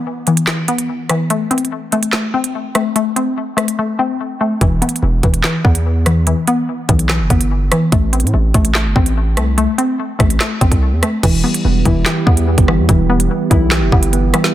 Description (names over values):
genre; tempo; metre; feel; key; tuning
hip hop, drill; 145 BPM; 4/4; half-time; E minor; A4 = 439 Hz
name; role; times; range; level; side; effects
hollow square pluck; arpeggios; 0.0-14.5 s; E3 to C4; -17 LUFS; left 2 dB; chorus, ping-pong delay
drill drum kit; drums; 0.3-14.5 s; crash cymbal, handclaps, hi-hat, kick drum, rim click, snare drum; -16 LUFS; right 1 dB; soft clipping on snare
distorted 808-style bass; bass; 4.6-14.3 s; E1 to A2; -16 LUFS; equal; distortion
soft electric-piano-like synth keys; accompaniment; 11.2-14.5 s; E3 to G4; -18 LUFS; right 3 dB; chorus
room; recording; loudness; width
light reverb, digital ambience; dense, heavily limited modern master; -12 LUFS; side -13 dB against mid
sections
0.0-11.2 A section; 11.2-14.5 B section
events
break 0.0-4.6; drums muted 3.8-4.6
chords
0.0 E5; 1.3 Am; 4.6 E5; 7.9 Am; 11.2 Em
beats
0.06 0.47 0.89 | 1.30 1.72 2.13 2.54 | 2.96 3.37 3.79 4.20 | 4.61 5.03 5.44 5.85 | 6.27 6.68 7.10 7.51 | 7.92 8.34 8.75 9.16 | 9.58 9.99 10.41 10.82 | 11.23 11.65 12.06 12.47 | 12.89 13.30 13.72 14.13